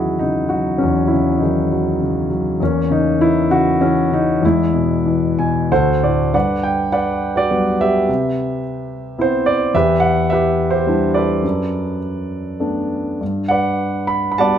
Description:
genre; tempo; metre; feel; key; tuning
classical, lyrical solo piano; 89-111 BPM; 3/4; rubato; unclear; A4 = 440 Hz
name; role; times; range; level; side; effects
warm concert grand piano; solo; 0.0-14.6 s; D2 to B5; -15 LUFS; equal; none
room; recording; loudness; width
moderate concert hall reverb, RT60 1.9 s; close, detailed microphones; -15 LUFS; side -9 dB against mid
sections
0.0-6.3 A section; 6.3-14.6 B section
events
grand piano fill 5.1-6.3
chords
0.0 D#m7/E; 2.6 C#m69/E; 4.4 E; 5.7 D7; 6.3 Gmaj7; 8.1 Cmaj7; 9.7 Em7; 11.4 Bm7/F#; 13.2 Gmaj7

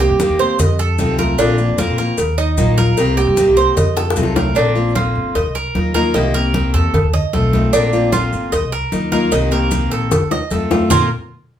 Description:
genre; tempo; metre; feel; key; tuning
latin, Cuban son and guajira; 151 BPM; 4/4; straight; Bb major; A4 = 441 Hz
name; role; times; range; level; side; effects
picked steel-string acoustic guitar; accompaniment; 0.0-11.1 s; Bb2 to Bb4; -20 LUFS; left 3 dB; none
Cuban tres; arpeggios; 0.0-11.1 s; Bb3 to Eb5; -18 LUFS; right 4 dB; none
upright bass; bass; 0.0-11.1 s; G1 to G2; -19 LUFS; equal; none
congas; percussion; 0.0-11.0 s; none; -21 LUFS; equal; none
cowbell and bongos; percussion; 0.0-11.0 s; none; -22 LUFS; left 2 dB; none
maracas; percussion; 0.0-4.6, 7.7-11.0 s; none; -31 LUFS; left 5 dB; none
room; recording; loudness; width
wet studio reverb, RT60 0.5 s; band playing live in one room; -13 LUFS; side -10 dB against mid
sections
0.0-4.6 A section; 4.6-10.9 B section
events
drum fill 4.0-4.6, 10.1-10.9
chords
0.0 Cm7; 0.6 F7; 1.4 Bbadd9; 2.2 Ebsus2; 3.0 Cm7; 3.8 F7; 4.6 Bbadd9; 5.4 Ebsus2; 6.1 Cm7; 6.9 F7; 7.7 Bbadd9; 8.5 Ebsus2; 9.3 Cm7; 10.1 F7; 10.9 Bbadd9

